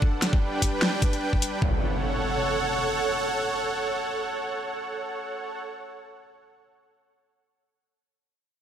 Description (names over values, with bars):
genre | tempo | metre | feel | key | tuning
heavy wobble dubstep | 150 BPM | 4/4 | swing 55% on 16ths, half-time | F# phrygian | A4 = 440 Hz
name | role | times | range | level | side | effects
supersaw pad | sustained chords | 0.0-5.6 s | G3 to G5 | -27 LUFS | right 2 dB | sidechain pumping
dubstep drum kit | drums | 0.0-1.7 s | kick drum, toms | -24 LUFS | equal | none
dubstep drum kit | drums | 0.2-1.5 s | hi-hat, snare drum | -26 LUFS | equal | none
impact | sound effects | 1.6-6.3 s | none | -30 LUFS | equal | none
room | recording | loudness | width
moderate plate reverb, RT60 1.9 s, digital ambience | none | -24 LUFS | side -9 dB against mid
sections
0.0-1.6 A section; 1.6-4.8 B section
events
none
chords
0.0 G; 1.6 F#m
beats
| 0.02 0.42 0.82 1.22 | 1.62 2.02 2.42 2.82 | 3.22 3.62 4.02 4.42